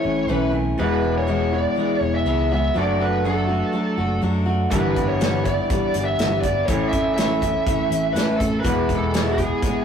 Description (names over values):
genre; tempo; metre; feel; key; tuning
folk rock and heartland rock; 122 BPM; 4/4; straight; A major; A4 = 437 Hz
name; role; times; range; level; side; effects
bluesy overdriven lead guitar; melody; 0.0-9.8 s; G#4 to E5; -24 LUFS; equal; distortion, analog delay
picked steel-string acoustic guitar; accompaniment; 0.0-9.8 s; E2 to F#4; -24 LUFS; left 2 dB; none
electric guitar through a small old amp; riff; 0.0-9.8 s; E2 to F#4; -26 LUFS; right 1 dB; none
fingered electric bass; bass; 0.1-9.5 s; E1 to A2; -25 LUFS; equal; none
natural country drum kit; drums; 4.7-9.7 s; hi-hat, kick drum, snare drum; -25 LUFS; equal; none
room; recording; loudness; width
moderate small room reverb, RT60 0.5 s; rough rehearsal-room recording, warm saturation; -18 LUFS; side -7 dB against mid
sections
0.0-9.8 A section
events
none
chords
0.0 A; 0.8 E; 2.8 D/F#; 4.7 G6; 6.7 A; 8.6 E